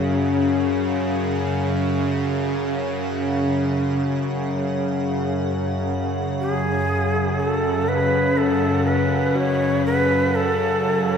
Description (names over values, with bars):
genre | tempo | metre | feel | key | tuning
dark ambient drone | free time | none | none | F# minor | A4 = 441 Hz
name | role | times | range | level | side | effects
dark detuned synth bell | arpeggios | 0.0-11.2 s | C#4 to F#4 | -38 LUFS | right 1 dB | none
bowed-like drone | drone | 0.0-11.2 s | F#2 to C#3 | -20 LUFS | left 1 dB | built-in reverb
icy glass pad | texture | 0.0-11.2 s | F#5 | -35 LUFS | right 2 dB | chorus, built-in reverb
breathy bright shakuhachi | melody | 6.4-11.2 s | G#4 to C#5 | -22 LUFS | right 1 dB | ping-pong delay
room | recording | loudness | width
wet plate reverb, RT60 2.4 s | dreamy mix soaked in reverb | -19 LUFS | side -7 dB against mid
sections
0.0-11.2 A section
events
fade-in on ambient pad 0.0-11.2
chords
0.0 F#5